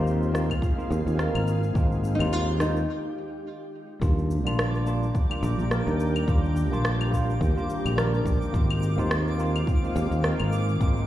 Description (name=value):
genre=sunset chillout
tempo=106 BPM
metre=4/4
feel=swing 57% on 16ths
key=Eb major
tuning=A4 = 439 Hz
part: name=tine electric piano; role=accompaniment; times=0.0-11.1 s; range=G3 to Bb4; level=-30 LUFS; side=equal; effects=auto-pan, digital delay
part: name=shimmering ambient pad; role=sustained chords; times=0.0-11.1 s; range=Eb3 to G4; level=-34 LUFS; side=equal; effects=chorus, built-in reverb
part: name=sustaining fretless electric bass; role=bass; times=0.0-11.1 s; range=Ab1 to Eb2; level=-25 LUFS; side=equal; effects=none
part: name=electronic shaker, rim click and claves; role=drums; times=0.1-11.1 s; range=none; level=-32 LUFS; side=equal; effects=none
part: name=electronic kick drum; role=drums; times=0.5-10.9 s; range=none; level=-24 LUFS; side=equal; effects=none
part: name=nylon-string guitar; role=melody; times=2.1-3.4 s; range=Eb4 to F4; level=-31 LUFS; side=left 1 dB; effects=ping-pong delay
part: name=twinkling granular texture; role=texture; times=4.6-11.1 s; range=D6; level=-40 LUFS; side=right 2 dB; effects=built-in reverb
room=light reverb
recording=played on a big sound system in a bare room, large studio reverb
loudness=-22 LUFS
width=side -13 dB against mid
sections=0.0-4.0 A section; 4.0-11.1 A section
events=break 2.9-4.0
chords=0.0 Ab6; 4.0 Ebmaj7; 8.5 Ab6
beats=0.06 0.62 1.19 | 1.75 2.32 2.89 3.45 | 4.02 4.58 5.15 5.72 | 6.28 6.85 7.41 7.98 | 8.55 9.11 9.68 10.24 | 10.81